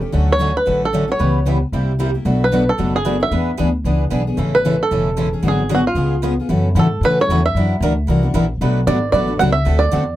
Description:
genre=acoustic string swing (jazz manouche)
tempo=227 BPM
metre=4/4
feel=swing 56% on 8ths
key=unclear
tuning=A4 = 442 Hz
part: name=picked steel-string acoustic guitar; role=accompaniment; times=0.0-10.0 s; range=B2 to A4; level=-20 LUFS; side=left 2 dB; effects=none
part: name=upright bass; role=bass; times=0.0-10.2 s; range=E1 to A2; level=-19 LUFS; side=equal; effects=none
part: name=picked swing-style acoustic guitar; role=accompaniment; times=0.1-10.0 s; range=B2 to B4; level=-26 LUFS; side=right 3 dB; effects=none
part: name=bluegrass banjo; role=melody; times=0.3-10.2 s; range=F4 to F#5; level=-18 LUFS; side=right 2 dB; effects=none
room=wet booth ambience, RT60 0.2 s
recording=heard from further back in the room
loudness=-14 LUFS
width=side -14 dB against mid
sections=0.0-6.5 A section; 6.5-10.2 B section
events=none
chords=0.1 Dmaj7; 1.2 C#m7b5; 1.7 C7; 2.3 Bm7; 3.3 E7; 4.4 Amaj7; 5.4 G#m7b5; 6.0 C#7; 6.5 F#m7; 7.5 F#aug7; 8.6 Bm7; 9.7 D9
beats=| 0.14 0.41 0.67 0.93 | 1.20 1.46 1.73 1.99 | 2.26 2.52 2.79 3.05 | 3.32 3.58 3.85 4.11 | 4.38 4.64 4.90 5.17 | 5.43 5.70 5.96 6.23 | 6.49 6.75 7.02 7.28 | 7.55 7.81 8.08 8.34 | 8.60 8.87 9.13 9.40 | 9.66 9.92

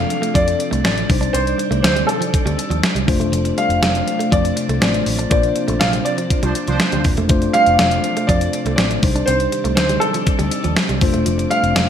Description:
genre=1980s-style pop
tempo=121 BPM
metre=4/4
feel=straight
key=F major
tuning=A4 = 440 Hz
part: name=warm grand piano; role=melody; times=0.0-11.9 s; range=A4 to F5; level=-20 LUFS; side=equal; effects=lush chorus, digital delay
part: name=mellow tine electric piano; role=accompaniment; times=0.0-11.9 s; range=F3 to C5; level=-23 LUFS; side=left 4 dB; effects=none
part: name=ensemble organ-string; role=sustained chords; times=0.0-11.9 s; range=C3 to D5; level=-27 LUFS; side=right 1 dB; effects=ensemble chorus
part: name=vintage muted picked electric bass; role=bass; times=0.0-11.9 s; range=Eb1 to F2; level=-22 LUFS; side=equal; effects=none
part: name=direct-recorded clean electric guitar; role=riff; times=0.1-11.9 s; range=F3 to D4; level=-27 LUFS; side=right 5 dB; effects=lush chorus, digital delay
part: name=clean 12-bit digital drum machine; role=drums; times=0.1-11.9 s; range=hi-hat, kick drum, snare drum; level=-19 LUFS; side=equal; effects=overdrive, gated reverb
part: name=analog synth brass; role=stabs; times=6.4-7.0 s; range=F3 to C5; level=-25 LUFS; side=right 4 dB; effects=chorus
room=moderate plate reverb, RT60 1.1 s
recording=bright 1980s-style digital production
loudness=-15 LUFS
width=side -8 dB against mid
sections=0.0-11.9 A section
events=band accent 5.3-7.3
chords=0.0 F6; 1.1 Cmadd9; 3.1 F6; 5.3 Bbadd9; 7.3 F6; 9.0 Cmadd9; 11.0 F6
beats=0.35 0.85 | 1.34 1.84 2.33 2.83 | 3.33 3.82 4.32 4.82 | 5.31 5.81 6.30 6.80 | 7.29 7.79 8.29 8.78 | 9.28 9.77 10.27 10.77 | 11.26 11.76

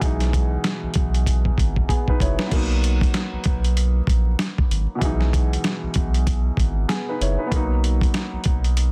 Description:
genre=hip hop, boom-bap hip-hop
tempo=96 BPM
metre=4/4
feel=swing 60% on 16ths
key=B major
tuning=A4 = 440 Hz
part: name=dark upright piano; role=accompaniment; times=0.0-8.9 s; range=B2 to C#5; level=-30 LUFS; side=equal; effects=cassette tape, high-pass filter, low-pass filter
part: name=saturated sub bass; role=bass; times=0.0-8.9 s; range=F#1 to B1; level=-23 LUFS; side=equal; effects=none
part: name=dusty soul sampler-style drum kit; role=drums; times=0.0-8.9 s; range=crash cymbal, hi-hat, kick drum, snare drum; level=-24 LUFS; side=equal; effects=overdrive
room=digital ambience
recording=dense, heavily limited modern master, vinyl crackle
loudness=-21 LUFS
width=mono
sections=0.0-2.5 A section; 2.5-8.9 A section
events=drum fill 1.3-2.5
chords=0.0 Emaj7/B; 2.5 Bmaj7; 5.0 Emaj7/B; 7.5 Bmaj7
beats=| 0.01 0.64 1.26 1.89 | 2.51 3.14 3.76 4.39 | 5.01 5.64 6.26 6.89 | 7.51 8.14 8.76

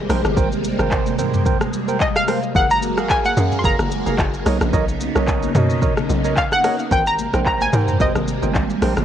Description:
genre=amapiano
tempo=110 BPM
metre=4/4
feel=swing 55% on 16ths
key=Ab major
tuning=A4 = 440 Hz
part: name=analog pluck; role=melody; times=0.0-8.8 s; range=Eb5 to C6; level=-20 LUFS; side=left 1 dB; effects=chorus, cassette tape, analog delay
part: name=phased string machine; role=sustained chords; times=0.0-9.0 s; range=C3 to Gb4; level=-24 LUFS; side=equal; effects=ensemble chorus, phaser, sidechain pumping, cassette tape
part: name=tight log drum bass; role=bass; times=0.0-9.0 s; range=F1 to B2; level=-22 LUFS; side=equal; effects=none
part: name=percussive organ stab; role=stabs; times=0.1-8.9 s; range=Ab4 to G5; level=-25 LUFS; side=right 8 dB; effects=chorus, cassette tape, analog delay
part: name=afro-pop drum kit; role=drums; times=0.1-9.0 s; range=handclaps, hi-hat, kick drum, rim click, shaker, toms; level=-21 LUFS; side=equal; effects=cassette tape
part: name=congas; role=percussion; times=0.1-9.0 s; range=none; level=-31 LUFS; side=left 10 dB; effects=none
room=light reverb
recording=home recording on cassette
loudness=-16 LUFS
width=side -10 dB against mid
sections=0.0-9.0 A section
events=none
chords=0.0 Abmaj9; 2.5 Gbmaj9; 4.5 Bmaj9; 6.9 Abmaj9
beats=| 0.37 0.91 1.46 2.00 | 2.55 3.10 3.64 4.19 | 4.73 5.28 5.82 6.37 | 6.91 7.46 8.00 8.55

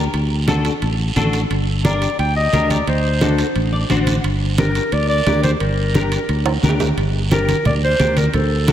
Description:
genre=latin, cumbia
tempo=176 BPM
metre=4/4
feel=straight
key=G harmonic minor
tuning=A4 = 440 Hz
part: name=semi-hollow electric guitar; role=accompaniment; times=0.0-8.7 s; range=D4 to F#5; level=-23 LUFS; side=left 2 dB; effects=ensemble chorus
part: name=fingered electric bass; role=bass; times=0.0-8.7 s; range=G1 to D2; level=-19 LUFS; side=equal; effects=none
part: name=congas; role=percussion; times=0.1-8.7 s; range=none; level=-23 LUFS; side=right 1 dB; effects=none
part: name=guiro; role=percussion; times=0.1-8.7 s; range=none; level=-30 LUFS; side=right 5 dB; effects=none
part: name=timbales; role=percussion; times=0.1-8.7 s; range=none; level=-29 LUFS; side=right 6 dB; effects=none
part: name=clear clarinet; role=melody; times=1.8-8.7 s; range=A4 to G5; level=-21 LUFS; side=left 1 dB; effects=tape echo
room=moderate lush hall reverb, RT60 2.7 s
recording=dreamy mix soaked in reverb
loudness=-15 LUFS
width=side -11 dB against mid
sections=0.0-7.0 A section; 7.0-8.7 A section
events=clean electric guitar fill 3.6-4.2; drum fill 6.5-7.0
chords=0.1 D; 1.5 Gm; 2.9 D7; 4.2 Gm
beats=| 0.14 0.48 0.82 1.16 | 1.50 1.85 2.19 2.53 | 2.87 3.21 3.56 3.90 | 4.24 4.58 4.92 5.26 | 5.61 5.95 6.29 6.63 | 6.97 7.32 7.66 8.00 | 8.34 8.68

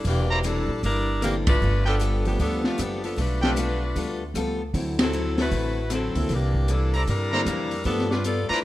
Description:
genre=jazz, big band swing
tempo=154 BPM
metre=4/4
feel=swing 64% on 8ths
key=G mixolydian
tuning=A4 = 440 Hz
part: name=clear saxophone section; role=melody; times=0.0-8.6 s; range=E3 to D5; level=-27 LUFS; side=left 1 dB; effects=none
part: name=picked steel-string acoustic guitar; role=accompaniment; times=0.0-8.5 s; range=C3 to A4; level=-33 LUFS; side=left 5 dB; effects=none
part: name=upright bass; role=bass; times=0.0-8.5 s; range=E1 to G2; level=-26 LUFS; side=equal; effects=none
part: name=open jazz drum kit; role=drums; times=0.0-8.6 s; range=hi-hat, kick drum, ride cymbal, rim click, snare drum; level=-27 LUFS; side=equal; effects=none
part: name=clear trumpet section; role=stabs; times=0.3-3.5, 6.9-8.6 s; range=E4 to Bb5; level=-28 LUFS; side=right 1 dB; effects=none
part: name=warm concert grand piano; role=accompaniment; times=1.2-8.1 s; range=D3 to A4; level=-31 LUFS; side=right 1 dB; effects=none
room=light reverb, small room ambience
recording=rough home demo mix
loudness=-22 LUFS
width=side -15 dB against mid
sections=0.0-8.6 A section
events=band accent 1.4, 4.9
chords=0.0 C9; 1.6 G9; 4.7 D9; 6.3 C9; 7.9 G9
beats=| 0.04 0.43 0.82 1.21 | 1.60 2.00 2.39 2.78 | 3.17 3.56 3.95 4.34 | 4.73 5.12 5.51 5.90 | 6.29 6.68 7.07 7.46 | 7.85 8.24

